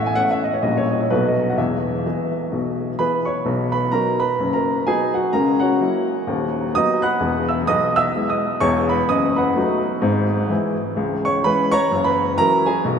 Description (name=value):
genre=jazz, stride piano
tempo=128 BPM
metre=4/4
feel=swing 60% on 8ths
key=E major, B major from 3.5 s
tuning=A4 = 439 Hz
part: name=warm upright piano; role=solo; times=0.0-13.0 s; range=D#1 to F#6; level=-17 LUFS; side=equal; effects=none
room=wet cathedral reverb, RT60 6.2 s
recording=in a vast, echoing space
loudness=-17 LUFS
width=side -7 dB against mid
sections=0.0-3.5 A section; 3.5-13.0 B section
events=none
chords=0.0 A; 0.6 A#dim7; 1.1 B7; 1.6 E; 3.5 B; 5.3 F#7/C#; 6.3 B/D#; 7.2 E; 9.1 B7/F#; 10.0 E/G#; 11.0 C#m; 11.9 F#7